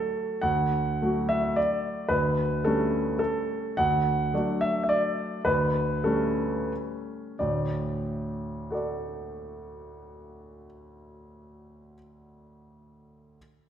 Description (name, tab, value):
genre	classical, romantic triple-time dance for piano with dotted rhythms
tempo	80-115 BPM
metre	3/4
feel	rubato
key	D major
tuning	A4 = 444 Hz
part	warm grand piano	solo	0.0-13.4 s	D2 to F#5	-25 LUFS	equal	none
room	wet scoring stage reverb, RT60 1.6 s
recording	heard from further back in the room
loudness	-24 LUFS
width	side -9 dB against mid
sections	0.4-7.4 A section; 7.4-11.2 B section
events	slowing down 2.9-7.4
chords	0.4 D; 2.1 A7/D; 3.8 D; 5.4 A7/D; 7.4 D